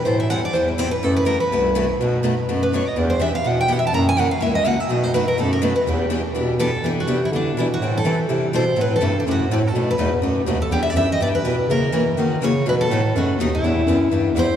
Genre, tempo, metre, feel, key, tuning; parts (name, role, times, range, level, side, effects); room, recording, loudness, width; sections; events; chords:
acoustic string swing (jazz manouche); 248 BPM; 4/4; swing 55% on 8ths; E minor; A4 = 437 Hz
picked steel-string acoustic guitar; melody; 0.0-14.6 s; D4 to A#5; -21 LUFS; equal
picked steel-string acoustic guitar; accompaniment; 0.0-14.5 s; B2 to A4; -25 LUFS; left 4 dB
mellow bass clarinet; bass; 0.0-14.6 s; C2 to E3; -21 LUFS; equal
picked steel-string acoustic guitar; accompaniment; 0.1-14.5 s; B2 to B4; -29 LUFS; right 5 dB
wet cathedral reverb, RT60 5.4 s; recorded in a church or concert hall, tape saturation; -17 LUFS; side -9 dB against mid
0.0-6.8 A section; 6.8-14.6 B section
steel-string acoustic guitar solo 0.0-6.8
0.0 Am7; 1.0 F#m7b5; 2.0 B7; 3.0 Em7; 3.9 F#7; 4.9 B7; 5.9 Em7; 7.8 Am7; 8.8 F#m7b5; 9.7 B7; 10.7 Em7; 11.7 F#7; 12.7 B7; 13.6 Em7